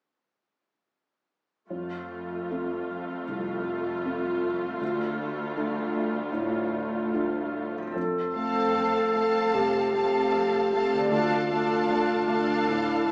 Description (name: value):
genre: cinematic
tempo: 77 BPM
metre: 4/4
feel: rubato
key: F major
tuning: A4 = 444 Hz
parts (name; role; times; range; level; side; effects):
- felt-muted upright piano; accompaniment; 1.7-13.1 s; C2 to A4; -34 LUFS; equal; none
- rich symphonic viola section; accompaniment; 1.7-13.1 s; A3 to A4; -34 LUFS; equal; none
- rich symphonic cello section; bass; 1.7-13.1 s; D2 to F2; -38 LUFS; equal; none
- concert harp; arpeggios; 7.8-13.1 s; D3 to A4; -39 LUFS; equal; none
- mellow clarinet; second line; 8.0-13.1 s; E4 to A4; -28 LUFS; equal; none
- warm symphonic violin section; second line; 8.3-13.1 s; F5 to A5; -31 LUFS; equal; none
room: wet recital hall reverb, RT60 1.3 s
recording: recorded in a church or concert hall, small speaker sound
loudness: -27 LUFS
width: mono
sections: 1.7-8.0 A section; 8.0-13.1 B section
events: none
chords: 1.7 F; 4.8 Dm; 8.0 F; 11.1 Dm